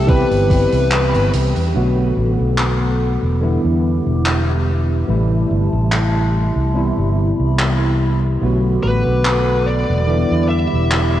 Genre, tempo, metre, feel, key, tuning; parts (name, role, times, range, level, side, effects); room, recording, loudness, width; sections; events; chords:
vaporwave; 72 BPM; 4/4; swing 54% on 16ths; A4 = 440 Hz
high-gain lead guitar; melody; 0.0-1.3, 8.8-11.2 s; B4 to E5; -21 LUFS; left 2 dB; distortion, vintage 12-bit sampler grit, tape echo
tine electric piano; accompaniment; 0.0-11.2 s; C3 to G4; -20 LUFS; equal; medium stereo tremolo, analog chorus, vintage 12-bit sampler grit, tape echo
warbly tape-like pad; sustained chords; 0.0-11.2 s; G4 to D6; -27 LUFS; left 1 dB; chorus, built-in reverb
fretless electric bass; bass; 0.0-11.2 s; E1 to E2; -17 LUFS; equal
electronic kick drum; drums; 0.1-0.7 s; -15 LUFS; equal; overdrive, vintage 12-bit sampler grit
gated 80s drum kit; drums; 0.1-11.1 s; handclaps, hi-hat; -24 LUFS; equal; vintage 12-bit sampler grit, gated reverb
light reverb, small room ambience; cassette tape; -14 LUFS; side -12 dB against mid
0.0-1.8 A section; 1.8-11.2 B section
band accent 0.9-1.3
0.1 Cmaj7; 1.8 Bm7; 3.4 Em7; 5.1 Am7; 6.8 Cmaj7; 8.4 Bm7; 10.1 Em7